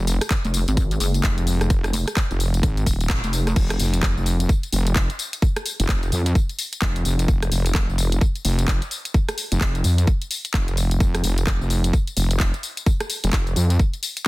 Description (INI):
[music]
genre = bass house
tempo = 129 BPM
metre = 4/4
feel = swing 61% on 16ths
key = F minor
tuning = A4 = 441 Hz
[part]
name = dark analog pad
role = sustained chords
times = 0.0-3.6 s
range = C4 to Ab4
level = -36 LUFS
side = left 7 dB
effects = none
[part]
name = wobble bass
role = bass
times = 0.0-13.8 s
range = Eb1 to F2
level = -20 LUFS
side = equal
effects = chorus, overdrive, sidechain pumping
[part]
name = garage drum kit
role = drums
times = 0.1-14.3 s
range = crash cymbal, handclaps, hi-hat, rim click, tambourine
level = -26 LUFS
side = left 1 dB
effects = none
[part]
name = electronic kick drum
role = drums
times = 0.3-13.9 s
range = none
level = -20 LUFS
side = equal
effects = none
[part]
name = pulsing pluck wobble bass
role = bass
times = 0.4-3.5 s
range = Eb1 to Ab1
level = -21 LUFS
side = equal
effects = chorus, tube saturation, sidechain pumping
[sound]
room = digital ambience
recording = dense, heavily limited modern master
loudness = -19 LUFS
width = side -20 dB against mid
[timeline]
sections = 0.0-3.6 A section; 3.6-14.3 A section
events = drop 0.0-3.6, 3.6-14.3; band accent 3.1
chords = 0.0 F5; 3.6 N.C.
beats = 0.31 0.77 1.24 | 1.70 2.17 2.63 3.10 | 3.56 4.03 4.49 4.96 | 5.42 5.89 6.35 6.82 | 7.28 7.75 8.21 8.68 | 9.14 9.61 10.07 10.54 | 11.00 11.47 11.93 12.40 | 12.86 13.33 13.79 14.26